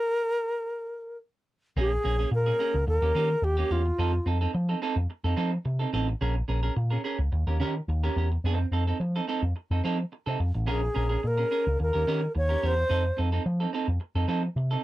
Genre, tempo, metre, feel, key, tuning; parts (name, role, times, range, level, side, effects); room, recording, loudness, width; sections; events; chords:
disco; 108 BPM; 4/4; straight; A4 = 440 Hz
bright reedy wooden-headed alto flute; melody; 0.0-4.3, 10.7-13.2 s; F4 to Db5; -27 LUFS; equal
semi-hollow electric guitar; accompaniment; 1.8-14.8 s; Bb3 to Bb4; -31 LUFS; right 4 dB
picked electric bass with an envelope filter; bass; 1.8-14.8 s; A1 to F3; -26 LUFS; equal
little or no reverb; dry, close 1970s-style studio recording; -25 LUFS; side -16 dB against mid
0.0-1.8 A section; 1.8-14.8 B section
stop 0.0-1.8
0.0 N.C.; 1.8 Bbm7; 2.9 Eb7; 4.0 F7; 6.2 Bbm7; 7.3 Eb7; 8.4 F7; 10.7 Bbm7; 11.8 Eb7; 12.9 F7